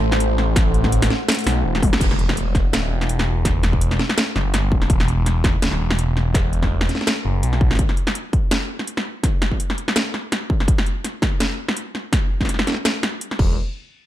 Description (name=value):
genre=half-time drum and bass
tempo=166 BPM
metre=4/4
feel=swing 55% on 16ths, half-time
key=unclear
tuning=A4 = 440 Hz
part: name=deep dark ambient pad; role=sustained chords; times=0.0-2.0 s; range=A3 to F#5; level=-27 LUFS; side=equal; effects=chorus, built-in reverb, sidechain pumping
part: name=phased detuned saw bass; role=bass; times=0.0-7.8, 13.4-13.6 s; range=D1 to C2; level=-20 LUFS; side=equal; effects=phaser, tube saturation
part: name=drum and bass drum kit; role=drums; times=0.1-13.5 s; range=crash cymbal, hi-hat, snare drum, toms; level=-22 LUFS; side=equal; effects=none
part: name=electronic kick drum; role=drums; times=0.6-13.5 s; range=none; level=-20 LUFS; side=equal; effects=distortion
part: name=impact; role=sound effects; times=2.0-3.5 s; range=none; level=-28 LUFS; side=equal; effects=none
room=digital ambience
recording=none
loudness=-17 LUFS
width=side -13 dB against mid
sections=0.0-2.0 A section; 2.0-13.6 B section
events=drop 0.0-2.0; drum fill 1.8; band accent 1.9; impact 2.0-3.5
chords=0.0 Am; 2.0 N.C.